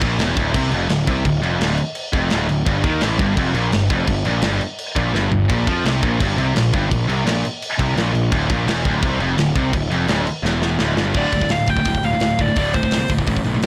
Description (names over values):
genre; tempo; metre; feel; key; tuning
heavy metal; 170 BPM; 4/4; straight; D minor; A4 = 439 Hz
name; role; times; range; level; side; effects
scooped high-gain guitar; riff; 0.0-13.7 s; D2 to F3; -24 LUFS; equal; distortion
tight distorted guitar; riff; 0.0-13.7 s; D2 to F3; -27 LUFS; equal; distortion
fuzz picked electric bass; bass; 0.0-13.7 s; D1 to F2; -24 LUFS; equal; overdrive
tight metal drum kit; drums; 0.0-13.7 s; crash cymbal, hi-hat, kick drum, snare drum, toms; -25 LUFS; equal; none
high-gain lead guitar; melody; 11.2-13.1 s; C5 to G5; -24 LUFS; equal; distortion, tape echo
room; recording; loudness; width
light reverb; blown-out, overdriven recording, overdrive; -19 LUFS; mono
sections
0.0-11.1 A section; 11.1-13.7 B section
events
drum fill 5.1-5.5, 10.4-11.1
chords
0.0 Dm; 2.7 F9sus4; 5.5 Bb5; 8.3 Dm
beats
0.19 0.55 0.90 | 1.25 1.61 1.96 2.31 | 2.67 3.02 3.37 3.73 | 4.08 4.43 4.79 5.14 | 5.49 5.85 6.20 6.55 | 6.91 7.26 7.61 7.97 | 8.32 8.67 9.03 9.38 | 9.73 10.09 10.44 10.79 | 11.15 11.50 11.85 12.21 | 12.56 12.92 13.27 13.62